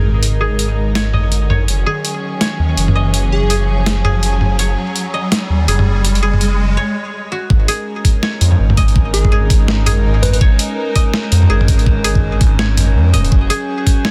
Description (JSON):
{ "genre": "half-time drum and bass", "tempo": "165 BPM", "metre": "4/4", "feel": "swing 59% on 16ths, half-time", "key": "unclear", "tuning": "A4 = 440 Hz", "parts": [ { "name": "warm studio string section", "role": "sustained chords", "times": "0.0-14.1 s", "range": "F#3 to A#4", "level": "-27 LUFS", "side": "equal", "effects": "vintage 12-bit sampler grit, sidechain pumping" }, { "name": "koto", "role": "arpeggios", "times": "0.0-14.1 s", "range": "F#4 to D#5", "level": "-26 LUFS", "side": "equal", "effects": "vintage 12-bit sampler grit, low-pass filter, delay" }, { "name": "phased detuned saw bass", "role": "bass", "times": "0.0-13.5 s", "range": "D#1 to E#2", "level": "-17 LUFS", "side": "equal", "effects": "phaser" }, { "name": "riser", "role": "sound effects", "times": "0.2-6.8 s", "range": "none", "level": "-26 LUFS", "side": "equal", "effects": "none" }, { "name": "boom bap sampler-style drum kit", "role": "drums", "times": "0.2-14.1 s", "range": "hi-hat, snare drum, toms", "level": "-20 LUFS", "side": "equal", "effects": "overdrive" }, { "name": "plucky unison lead", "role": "melody", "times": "3.3-3.5, 9.1-10.4 s", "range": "G#4 to B4", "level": "-28 LUFS", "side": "equal", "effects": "none" }, { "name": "electronic kick drum", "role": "drums", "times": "7.5-14.0 s", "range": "none", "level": "-15 LUFS", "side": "equal", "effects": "none" }, { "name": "metallic inharmonic drone", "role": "texture", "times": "7.7-14.1 s", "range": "C#4", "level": "-30 LUFS", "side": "equal", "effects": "chorus, built-in reverb, phaser" } ], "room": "digital ambience", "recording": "dense, heavily limited modern master", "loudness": "-15 LUFS", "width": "mono", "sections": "0.0-7.5 A section; 7.5-14.1 B section", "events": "build-up 0.0-7.5; riser 0.2-6.8; break 6.8-7.5; drop 7.5-14.1", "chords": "0.0 G#sus2; 1.7 F#5; 7.5 G#sus2; 13.3 F#5" }